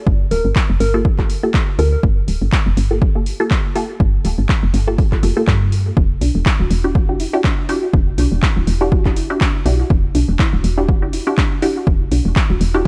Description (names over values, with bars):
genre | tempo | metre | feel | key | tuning
deep house | 122 BPM | 4/4 | swing 56% on 16ths | unclear | A4 = 435 Hz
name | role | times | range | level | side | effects
woody FM bass | bass | 0.1-12.9 s | D1 to G2 | -20 LUFS | equal | sidechain pumping
electronic kick drum | drums | 0.1-12.9 s | none | -18 LUFS | equal | overdrive
soft struck synth lead | melody | 0.3-2.0 s | Bb4 | -25 LUFS | equal | chorus, analog delay
punchy analog drum machine | drums | 0.3-12.9 s | handclaps, hi-hat | -28 LUFS | equal | none
filtered dub chord stab | stabs | 0.9-12.9 s | Bb3 to A4 | -24 LUFS | equal | phaser, sidechain pumping, analog delay
soft round pluck | arpeggios | 6.2-12.9 s | D4 to G4 | -28 LUFS | equal | ensemble chorus, sidechain pumping, analog delay
room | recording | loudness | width
little or no reverb | none | -16 LUFS | mono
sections
0.0-12.9 A section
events
filter sweep on synth stab 0.0-12.9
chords
0.0 Gm9; 6.0 Em9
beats
| 0.07 0.56 1.05 1.54 | 2.03 2.52 3.02 3.51 | 4.00 4.49 4.98 5.48 | 5.97 6.46 6.95 7.44 | 7.93 8.43 8.92 9.41 | 9.90 10.39 10.89 11.38 | 11.87 12.36 12.85